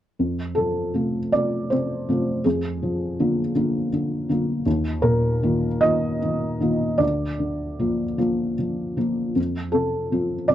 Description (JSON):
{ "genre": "neoclassical minimalist piano", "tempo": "49-55 BPM (dotted quarters)", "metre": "6/8", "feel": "rubato", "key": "F mixolydian", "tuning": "A4 = 442 Hz", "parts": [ { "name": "felt-muted upright piano", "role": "solo", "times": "0.2-10.5 s", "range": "D2 to Eb5", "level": "-21 LUFS", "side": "equal", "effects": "none" } ], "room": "light reverb", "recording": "dry, close 1970s-style studio recording", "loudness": "-21 LUFS", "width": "side -12 dB against mid", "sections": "0.2-10.5 A section", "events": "none", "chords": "0.2 F; 2.4 Bb7/F; 4.7 Ebsus2; 7.0 Bb/D; 9.4 F", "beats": "| 0.19 1.33 | 2.45 3.54 | 4.65 5.84 | 7.02 8.21 | 9.37 10.51" }